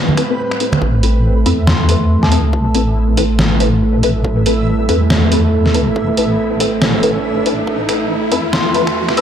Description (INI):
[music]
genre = deep dubstep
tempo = 140 BPM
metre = 4/4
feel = swing 59% on 16ths, half-time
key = A minor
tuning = A4 = 440 Hz
[part]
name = dark analog pad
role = sustained chords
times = 0.0-9.2 s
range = A3 to A4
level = -20 LUFS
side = right 3 dB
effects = chorus
[part]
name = backwards swelling texture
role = texture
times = 0.0-9.2 s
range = C4 to E5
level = -25 LUFS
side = right 2 dB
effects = built-in reverb
[part]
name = congas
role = percussion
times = 0.1-0.8 s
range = none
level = -19 LUFS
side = right 3 dB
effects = dub echo
[part]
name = filtered dub chord stab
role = stabs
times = 0.2-9.2 s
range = C4 to B4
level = -20 LUFS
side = left 3 dB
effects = phaser, ensemble chorus, dub echo
[part]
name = trip hop sampler-style drum kit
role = drums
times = 0.2-9.2 s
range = finger snaps, hi-hat, snare drum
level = -18 LUFS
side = equal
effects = none
[part]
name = deep soft wobble bass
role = bass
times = 0.8-9.2 s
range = A1 to E2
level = -16 LUFS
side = equal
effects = chorus
[part]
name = electronic kick drum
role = drums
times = 0.8-8.4 s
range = none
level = -26 LUFS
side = equal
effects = high-pass filter on kick
[part]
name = riser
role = sound effects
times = 3.1-9.2 s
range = none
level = -24 LUFS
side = equal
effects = none
[part]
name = dark detuned synth bell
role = melody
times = 1.7-2.8, 8.5-9.2 s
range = A5 to E6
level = -24 LUFS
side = left 2 dB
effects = chorus, low-pass filter, dub echo
[sound]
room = moderate spring reverb, RT60 1.6 s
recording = dark, warm production, high-pass filter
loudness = -12 LUFS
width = side -9 dB against mid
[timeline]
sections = 0.8-9.2 A section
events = build-up 0.8-9.2; filter sweep on synth stab 0.8-9.2; filter sweep on synth bell 0.8-9.2; filter sweep 0.8-9.2; riser 3.1-9.2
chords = 0.0 Amadd9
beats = 0.39 | 0.82 1.25 1.67 2.10 | 2.53 2.96 3.39 3.82 | 4.25 4.67 5.10 5.53 | 5.96 6.39 6.82 7.25 | 7.67 8.10 8.53 8.96